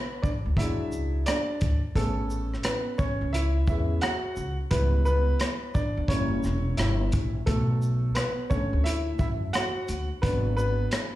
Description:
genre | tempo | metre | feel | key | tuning
hip hop, jazz-hop | 87 BPM | 4/4 | swing 65% on 16ths | unclear | A4 = 440 Hz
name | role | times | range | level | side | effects
warm grand piano | accompaniment | 0.0-11.2 s | D3 to F#5 | -30 LUFS | right 1 dB | none
crunchy breakbeat drum kit | drums | 0.2-11.1 s | hi-hat, kick drum, rim click, shaker | -29 LUFS | equal | none
upright bass | bass | 0.5-10.8 s | E1 to F#2 | -26 LUFS | equal | none
room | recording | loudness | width
studio ambience | played on a big sound system in a bare room, large studio reverb | -24 LUFS | side -15 dB against mid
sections
0.0-11.2 A section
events
grand piano solo 0.0-11.2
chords
0.0 Bm7; 0.6 E7; 2.0 Amaj9; 4.7 C#m7b5; 6.1 F#7b9; 7.5 Bm9; 10.2 G#m7b5

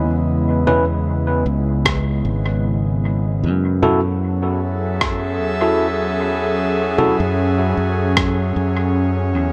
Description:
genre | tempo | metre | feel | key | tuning
ambient dub | 76 BPM | 4/4 | swing 54% on 16ths | unclear | A4 = 439 Hz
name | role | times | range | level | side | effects
airy breathy pad | sustained chords | 0.0-9.5 s | C#3 to E5 | -23 LUFS | equal | chorus
fingered electric bass | bass | 0.0-9.5 s | G#1 to F#2 | -22 LUFS | equal | none
overdriven tine electric piano | stabs | 0.7-7.2 s | C#4 to B4 | -24 LUFS | equal | dub echo
electronic congas and rim click | drums | 0.7-8.3 s | none | -26 LUFS | equal | dub echo
electronic kick drum | drums | 1.9-8.3 s | none | -26 LUFS | equal | none
room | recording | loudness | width
light reverb, digital ambience | none | -19 LUFS | mono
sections
0.0-9.5 A section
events
none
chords
0.0 C#m7; 3.4 F#m7

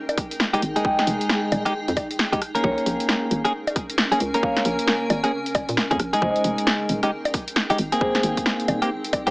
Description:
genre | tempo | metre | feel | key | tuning
UK garage, two-step garage | 134 BPM | 4/4 | swing 62% on 16ths | Bb dorian | A4 = 439 Hz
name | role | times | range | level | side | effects
granular cloud pad | texture | 0.0-9.3 s | C4 to Ab5 | -30 LUFS | equal | built-in reverb, sidechain pumping
punchy analog drum machine | drums | 0.1-9.3 s | bongos, hi-hat, rim click, snare drum | -23 LUFS | equal | none
electronic kick drum | drums | 0.2-9.2 s | none | -26 LUFS | equal | none
clean electric guitar | stabs | 0.5-9.3 s | Ab3 to Bb4 | -23 LUFS | equal | tape echo
hollow knocking FM bass | bass | 0.6-9.3 s | Eb1 to Bb2 | -26 LUFS | equal | none
vibraphone with medium mallets | melody | 0.8-8.2 s | Ab4 to G5 | -26 LUFS | equal | none
room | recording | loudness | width
moderate studio reverb, RT60 0.6 s | vinyl crackle, small speaker sound | -20 LUFS | side -26 dB against mid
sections
0.0-9.3 A section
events
none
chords
0.0 Fm9 (rootless); 2.6 Bbm7; 6.2 Fm9; 8.0 Abmaj9

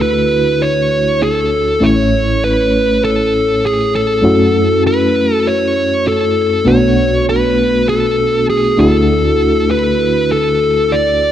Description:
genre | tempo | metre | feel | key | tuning
pop | 99 BPM | 4/4 | straight | unclear | A4 = 438 Hz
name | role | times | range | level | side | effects
fuzz lead guitar | melody | 0.0-11.3 s | G#4 to D5 | -14 LUFS | equal | distortion
FM electric piano with tremolo | accompaniment | 0.0-11.3 s | A1 to C#5 | -14 LUFS | equal | none
room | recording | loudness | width
moderate lush hall reverb, RT60 2.5 s | dark, warm production | -11 LUFS | side -10 dB against mid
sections
0.0-11.3 A section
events
none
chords
0.0 Dadd9; 1.8 A; 4.2 F#m7; 6.7 Bm7; 8.8 Dadd9

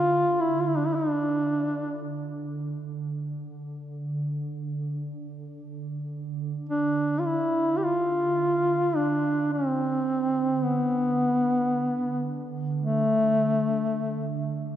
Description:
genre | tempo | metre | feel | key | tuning
caucasian folk, Caucasian lament | free time | none | none | D dorian | A4 = 440 Hz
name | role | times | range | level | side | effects
mellow duduk | melody | 0.0-14.4 s | A3 to G4 | -24 LUFS | equal | none
glassy FM pad | drone | 0.0-14.8 s | D3 | -32 LUFS | right 3 dB | ensemble chorus, built-in reverb
room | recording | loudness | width
wet church reverb, RT60 3.5 s | dark, warm production | -24 LUFS | side -11 dB against mid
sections
0.0-6.1 A section; 6.1-14.8 B section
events
none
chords
none

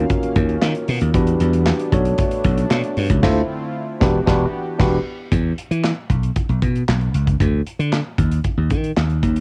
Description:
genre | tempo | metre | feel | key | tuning
early-eighties boogie funk | 115 BPM | 4/4 | straight | unclear | A4 = 440 Hz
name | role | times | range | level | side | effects
tine electric piano | accompaniment | 0.0-5.0 s | C#4 to C#5 | -24 LUFS | equal | none
warm analog pad | sustained chords | 0.0-5.3 s | D3 to E#5 | -32 LUFS | equal | chorus
slap bass | bass | 0.0-9.4 s | E1 to E3 | -21 LUFS | equal | none
modern studio drum kit | drums | 0.1-9.4 s | crash cymbal, handclaps, hi-hat, kick drum, snare drum | -24 LUFS | equal | cassette tape
room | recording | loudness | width
studio reverb | home recording on cassette | -19 LUFS | mono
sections
0.0-5.3 A section; 5.3-9.4 B section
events
band accent 3.2-5.3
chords
0.0 D#m9; 1.1 Em9; 1.9 Bm9; 3.2 Dm9; 4.0 Em9; 5.3 N.C.; 6.1 Bsus2; 7.4 N.C.

